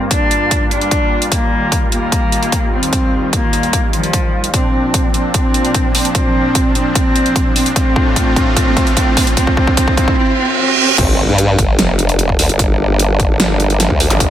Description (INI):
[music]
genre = heavy wobble dubstep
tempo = 149 BPM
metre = 4/4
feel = half-time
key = G minor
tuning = A4 = 444 Hz
[part]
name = dark cello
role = melody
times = 0.0-11.0 s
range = F3 to D4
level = -17 LUFS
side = equal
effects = low-pass filter, digital delay
[part]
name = supersaw chords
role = sustained chords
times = 0.0-14.3 s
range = Eb2 to F4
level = -20 LUFS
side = equal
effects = sidechain pumping, low-pass filter
[part]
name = dubstep drum kit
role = drums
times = 0.1-14.3 s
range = crash cymbal, hi-hat, snare drum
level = -18 LUFS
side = right 1 dB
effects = none
[part]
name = electronic kick drum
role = drums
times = 0.1-14.3 s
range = none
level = -16 LUFS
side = equal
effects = none
[part]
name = riser, reverse cymbal, impact and zap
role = sound effects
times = 7.1-14.2 s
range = none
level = -20 LUFS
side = right 3 dB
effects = none
[part]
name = formant-sweep wobble bass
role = bass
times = 11.0-14.3 s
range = F1 to G2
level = -14 LUFS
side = equal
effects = chorus, overdrive
[sound]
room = light reverb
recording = none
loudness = -11 LUFS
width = side -11 dB against mid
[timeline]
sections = 0.0-11.0 A section; 11.0-14.3 B section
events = build-up 0.0-11.0; filter sweep on supersaw synth 0.0-11.0; filter sweep on cello 0.0-11.0; drum fill 4.5-10.2; riser 7.1-11.0; reverse cymbal 10.2-11.0; drop 11.0-14.3; impact 11.0-12.6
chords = 0.0 Gm7; 1.3 Ebadd9; 4.5 Bbadd9; 7.8 Dm/A; 11.0 Gm